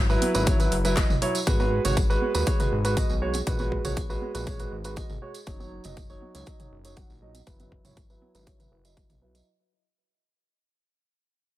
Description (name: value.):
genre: progressive house.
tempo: 120 BPM.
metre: 4/4.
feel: straight.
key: G# minor.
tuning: A4 = 440 Hz.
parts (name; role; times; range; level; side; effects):
fat analog bass; bass; 0.0-9.4 s; F#1 to D#2; -30 LUFS; left 1 dB; sidechain pumping.
clear grand piano; stabs; 0.1-9.4 s; F#3 to F#5; -28 LUFS; right 2 dB; sidechain pumping, low-pass filter, ping-pong delay.
tambourine; percussion; 0.1-9.4 s; none; -38 LUFS; right 4 dB; none.
big-room dance drum kit; drums; 0.2-9.4 s; handclaps, hi-hat; -33 LUFS; equal; overdrive.
electronic congas and toms; percussion; 0.2-9.2 s; none; -36 LUFS; right 2 dB; sidechain pumping on perc, sidechain pumping on toms.
electronic kick drum; drums; 0.5-9.1 s; none; -26 LUFS; left 1 dB; overdrive.
room: little or no reverb.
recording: none.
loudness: -23 LUFS.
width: side -15 dB against mid.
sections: 0.0-9.5 A section.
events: fade-out 0.0-9.5; filter sweep on grand piano 0.0-9.5.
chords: 0.0 F#7sus4; 1.5 G#m7; 5.5 D#m7/F#; 7.5 F#7sus4.